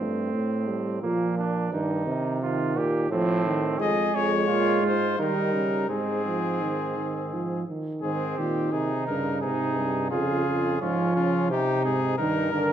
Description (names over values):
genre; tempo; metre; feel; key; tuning
classical, imitative canzona for brass ensemble; 86 BPM; 3/4; straight; Ab major from 3.8 s; A4 = 440 Hz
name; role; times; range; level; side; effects
clear flugelhorn; second line; 0.0-12.7 s; Bb3 to Bb4; -30 LUFS; right 5 dB; none
mellow euphonium; accompaniment; 0.0-12.7 s; C3 to A3; -27 LUFS; right 2 dB; none
clear bass trombone; bass; 0.0-12.7 s; F2 to Eb3; -30 LUFS; right 2 dB; none
clear trumpet; melody; 3.8-12.7 s; F4 to Eb5; -29 LUFS; left 8 dB; none
room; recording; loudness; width
wet recital hall reverb, RT60 1.5 s; dark, warm production; -23 LUFS; side -10 dB against mid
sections
0.0-8.0 A section; 8.0-12.7 B section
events
none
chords
0.0 F (rootless); 1.0 Bb; 1.7 Eb/G; 3.1 Adim; 3.8 Db/F; 5.2 Eb; 5.9 Ab; 10.1 Db/F; 11.5 Ab/C; 12.2 Eb/G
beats
0.33 1.03 | 1.73 2.42 3.11 | 3.79 4.48 5.18 | 5.89 6.60 7.31 | 8.02 8.72 9.42 | 10.12 10.81 11.50 | 12.19